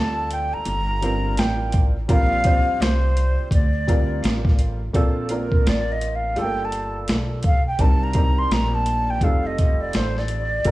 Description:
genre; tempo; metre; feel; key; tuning
hip hop, jazz-hop; 84 BPM; 4/4; swing 61% on 16ths; Bb major; A4 = 440 Hz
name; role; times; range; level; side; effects
breathy mellow silver concert flute; melody; 0.0-10.7 s; A4 to C6; -25 LUFS; equal; none
warm upright piano; accompaniment; 0.0-10.7 s; G3 to C5; -28 LUFS; right 1 dB; none
upright bass; bass; 0.0-10.7 s; F1 to D2; -24 LUFS; equal; none
boom bap sampler-style drum kit; drums; 0.3-10.7 s; hi-hat, kick drum, snare drum; -20 LUFS; equal; none
room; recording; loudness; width
small room ambience; worn, warbling old tape, cassette tape, warbly pitch drift, studio reverb; -18 LUFS; side -17 dB against mid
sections
0.0-4.9 A section; 4.9-10.7 B section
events
flute solo 4.9-10.7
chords
0.0 Bb69; 4.9 Bbmaj7; 6.4 Gm7; 7.8 Cm7; 9.2 F7

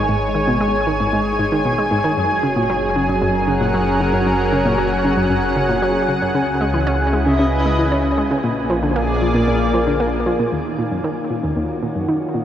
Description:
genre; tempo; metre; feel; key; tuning
ambient, sequencer-driven space music; 115 BPM; 4/4; straight; unclear; A4 = 440 Hz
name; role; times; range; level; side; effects
lush unison pad; sustained chords; 0.0-12.4 s; A#2 to G#5; -19 LUFS; equal; chorus, shimmer reverb
round analog bass; bass; 0.0-10.5 s; F#1 to C#2; -25 LUFS; equal; none
wind-like tuned noise texture; texture; 0.0-10.5 s; G#5; -28 LUFS; right 3 dB; built-in reverb, shimmer reverb
analog pluck; riff; 0.1-12.4 s; Eb2 to C#4; -20 LUFS; equal; chorus, ping-pong delay, shimmer reverb
room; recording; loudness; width
wet huge ambient reverb, RT60 9.0 s; worn, warbling old tape, cassette tape, warbly pitch drift; -16 LUFS; side -10 dB against mid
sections
0.0-10.5 A section; 10.5-12.4 B section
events
none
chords
0.0 G#m; 2.2 F#add9; 6.3 C#m7; 8.4 A#7; 10.5 Ebm7

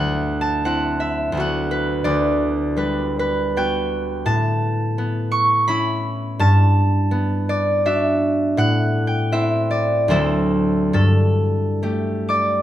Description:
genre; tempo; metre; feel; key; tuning
classical, solo harp piece; 64-88 BPM; 3/4; rubato; G major; A4 = 442 Hz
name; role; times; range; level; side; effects
concert harp; solo; 0.0-12.6 s; D2 to D6; -17 LUFS; equal; none
room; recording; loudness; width
light reverb; close, detailed microphones; -17 LUFS; side -12 dB against mid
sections
0.0-12.6 A section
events
none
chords
0.0 D9; 1.4 Bm7/D; 2.1 Gmaj7/D; 4.3 Aadd9; 6.4 Gmaj7; 8.6 Am7; 10.1 D9; 11.0 Gmaj7sus2

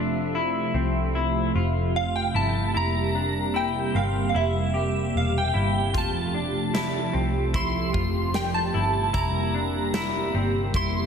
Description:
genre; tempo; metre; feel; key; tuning
dream pop; 75 BPM; 4/4; straight; F major; A4 = 441 Hz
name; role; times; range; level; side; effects
warm analog pad; sustained chords; 0.0-11.1 s; C3 to E5; -28 LUFS; right 2 dB; chorus
clean electric guitar; arpeggios; 0.0-11.1 s; C4 to G4; -30 LUFS; left 4 dB; wide subtle chorus, tape echo
vintage muted picked electric bass; bass; 0.0-11.1 s; E1 to C2; -28 LUFS; equal; none
shimmering bell with halo; melody; 2.0-11.1 s; E5 to C6; -28 LUFS; right 1 dB; ensemble chorus, phaser, tape echo
huge arena drum kit; drums; 5.9-10.9 s; hi-hat, kick drum, snare drum; -31 LUFS; equal; none
room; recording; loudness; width
light reverb, small room ambience; none; -22 LUFS; side -7 dB against mid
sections
0.0-11.1 A section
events
none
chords
0.0 Fmaj7; 2.7 C7/F; 5.9 Fmaj7; 9.1 C7/F

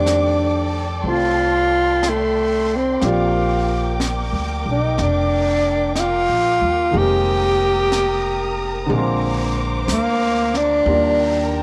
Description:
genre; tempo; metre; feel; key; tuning
jazz ballad; 61 BPM; 4/4; swing 68% on 8ths; unclear; A4 = 440 Hz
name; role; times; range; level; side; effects
breathy tenor saxophone; melody; 0.0-11.6 s; A3 to G4; -20 LUFS; equal; none
warm concert grand piano; accompaniment; 0.0-11.6 s; D3 to D5; -28 LUFS; equal; none
warm studio string section; sustained chords; 0.0-11.6 s; A4 to Eb6; -30 LUFS; equal; none
upright bass; bass; 0.0-11.6 s; F1 to F2; -26 LUFS; equal; none
jazz brush drum kit; drums; 0.1-11.6 s; brushed snare drum, hi-hat, snare drum; -33 LUFS; equal; none
room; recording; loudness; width
light reverb, small room ambience; none; -19 LUFS; mono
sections
0.0-11.6 A section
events
none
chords
0.0 F13; 3.0 Bb6; 6.9 Fm11; 8.9 Bb9; 10.9 Ebmaj7

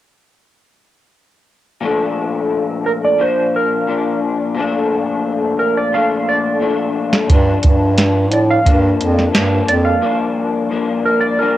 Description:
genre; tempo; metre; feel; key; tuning
indie pop, bedroom pop; 88 BPM; 4/4; straight; Bb major; A4 = 436 Hz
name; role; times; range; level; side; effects
electric guitar through a small old amp; accompaniment; 1.8-11.6 s; G2 to D4; -18 LUFS; left 4 dB; ensemble chorus, vibrato effect, cassette tape
clean lap steel guitar; melody; 2.9-11.6 s; Bb4 to F5; -17 LUFS; right 2 dB; analog chorus, cassette tape, analog delay
soft vintage rhythm box; drums; 7.1-9.8 s; hi-hat, kick drum, snare drum; -14 LUFS; right 1 dB; cassette tape
warm bass clarinet; bass; 7.3-9.9 s; F2 to A2; -15 LUFS; right 1 dB; none
room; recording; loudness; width
moderate spring reverb, RT60 1.9 s, digital ambience; home recording on cassette; -13 LUFS; side -13 dB against mid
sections
1.8-11.6 A section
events
drum fill 5.9-7.3; break 10.0-11.6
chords
1.8 Bbmaj7; 7.3 Gm7

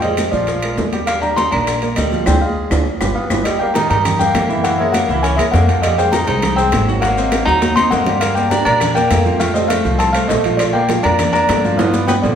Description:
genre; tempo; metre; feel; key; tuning
Afro-Cuban jazz; 202 BPM; 4/4; straight; Eb major; A4 = 440 Hz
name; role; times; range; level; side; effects
felt-muted upright piano; melody; 0.0-12.4 s; D5 to C6; -18 LUFS; left 1 dB; none
clear tenor saxophone; second line; 0.0-12.4 s; F3 to D#4; -21 LUFS; equal; none
warm concert grand piano; accompaniment; 0.0-12.4 s; D3 to G5; -21 LUFS; right 2 dB; none
upright bass; bass; 0.0-12.4 s; G1 to Bb2; -20 LUFS; equal; none
congas; percussion; 0.0-12.2 s; none; -24 LUFS; equal; none
maracas; percussion; 0.0-12.4 s; none; -33 LUFS; left 6 dB; none
timbales; percussion; 0.0-12.3 s; none; -25 LUFS; right 3 dB; none
bongos; percussion; 0.2-12.2 s; none; -27 LUFS; left 2 dB; none
claves; percussion; 0.2-12.2 s; none; -33 LUFS; left 2 dB; none
room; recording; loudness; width
wet recital hall reverb, RT60 1.6 s; recorded in a church or concert hall; -13 LUFS; side -8 dB against mid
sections
0.0-3.5 A section; 3.5-12.4 B section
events
drum fill 2.3-3.5, 7.6-8.2, 11.8-12.4; band accent 2.3-3.5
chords
0.5 Bb7; 1.1 Ebmaj9; 2.3 Ddim; 2.9 G7; 3.5 F#13b9; 4.6 F#7; 5.8 Fm9; 7.0 Ab9; 8.2 Gm7; 9.4 F7; 10.6 Bb6; 11.8 G7

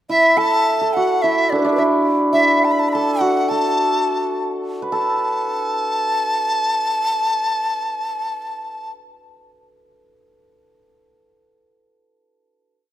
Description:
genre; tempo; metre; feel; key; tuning
chinese traditional, Chinese chamber ensemble; 74-109 BPM; 2/4; rubato; A zhi mode; A4 = 440 Hz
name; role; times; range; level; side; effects
breathy large dizi; melody; 0.1-8.9 s; D4 to B5; -19 LUFS; equal; none
hammered dulcimer; second line; 0.1-9.0 s; D4 to B4; -19 LUFS; right 1 dB; none
room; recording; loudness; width
moderate concert hall reverb, RT60 2.0 s; none; -16 LUFS; side -12 dB against mid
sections
0.1-4.9 A section; 4.9-8.1 final chord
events
slowing down 2.3-4.9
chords
none

